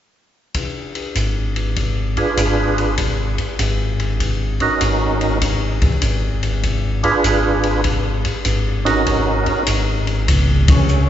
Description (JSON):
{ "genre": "soul jazz organ trio", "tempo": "99 BPM", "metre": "4/4", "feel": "swing 66% on 8ths", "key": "unclear", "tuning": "A4 = 440 Hz", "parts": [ { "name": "open jazz drum kit", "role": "drums", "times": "0.5-11.1 s", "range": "hi-hat, kick drum, ride cymbal", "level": "-21 LUFS", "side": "left 2 dB", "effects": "none" }, { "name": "mellow tonewheel organ", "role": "bass", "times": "1.2-11.1 s", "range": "Ab1 to Db2", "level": "-19 LUFS", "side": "equal", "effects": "chorus vibrato, slow rotary speaker" }, { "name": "percussive tonewheel organ", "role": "melody", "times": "2.2-11.1 s", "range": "Db4 to Cb5", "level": "-20 LUFS", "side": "right 3 dB", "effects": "slow rotary speaker, overdrive, chorus vibrato" } ], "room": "wet church reverb, RT60 3.1 s", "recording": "recorded in a church or concert hall, nothing above 7.8 kHz", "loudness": "-16 LUFS", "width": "side -11 dB against mid", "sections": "0.6-10.3 A section", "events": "band accent 10.6-10.9", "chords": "0.6 N.C.; 1.8 Abdim7; 3.0 N.C.; 4.2 Ab7sus4; 5.4 N.C.; 6.6 Abdim7; 10.3 Db5", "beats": "| 0.55 1.16 1.77 2.38 | 2.98 3.59 4.20 4.81 | 5.42 6.03 6.64 7.25 | 7.85 8.46 9.07 9.68 | 10.29 10.89" }